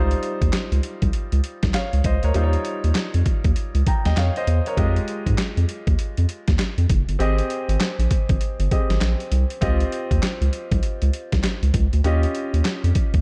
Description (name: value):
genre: R&B, new jack swing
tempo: 99 BPM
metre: 4/4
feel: swing 62% on 16ths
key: unclear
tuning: A4 = 440 Hz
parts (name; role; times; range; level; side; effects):
- clear concert grand piano; accompaniment; 0.0-13.2 s; G3 to Bb5; -30 LUFS; equal; none
- round analog bass; bass; 0.0-13.2 s; Gb1 to Ab2; -22 LUFS; equal; none
- boom bap sampler-style drum kit; drums; 0.1-13.2 s; handclaps, hi-hat, kick drum, snare drum; -25 LUFS; equal; overdrive
room: little or no reverb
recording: dark, warm production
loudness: -21 LUFS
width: mono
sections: 0.0-13.2 A section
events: none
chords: 0.0 Dbmaj9#11; 2.4 Eb9; 4.8 Fm9; 7.2 Abmaj7; 9.6 Dbmaj9#11; 12.0 Eb9